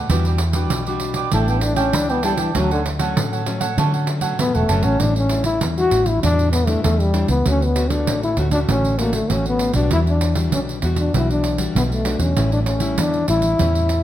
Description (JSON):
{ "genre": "samba and choro", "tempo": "98 BPM", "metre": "4/4", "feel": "straight", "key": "D major", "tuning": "A4 = 441 Hz", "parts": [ { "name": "cavaquinho", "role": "accompaniment", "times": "0.0-5.0 s", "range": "D4 to G5", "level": "-25 LUFS", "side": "right 8 dB", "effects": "none" }, { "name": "nylon-string guitar", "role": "accompaniment", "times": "0.0-14.0 s", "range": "A2 to F#4", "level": "-25 LUFS", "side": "left 4 dB", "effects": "none" }, { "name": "vintage muted fingered electric bass", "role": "bass", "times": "0.1-14.0 s", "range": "E1 to D3", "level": "-21 LUFS", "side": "equal", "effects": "none" }, { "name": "pandeiro", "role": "percussion", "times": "0.1-14.0 s", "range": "none", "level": "-25 LUFS", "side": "right 4 dB", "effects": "none" }, { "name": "breathy trombone", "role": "melody", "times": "1.3-14.0 s", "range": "D3 to F#4", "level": "-21 LUFS", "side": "left 2 dB", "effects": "none" } ], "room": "moderate large studio reverb, RT60 1.5 s", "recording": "none", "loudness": "-16 LUFS", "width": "side -12 dB against mid", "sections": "0.0-5.0 A section; 5.0-14.0 B section", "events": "trombone solo 0.0-5.0", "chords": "0.1 Em9; 1.3 A7sus4; 2.6 Dmaj7; 5.0 A7sus4; 7.5 Dmaj7; 9.9 Em9; 12.4 A7" }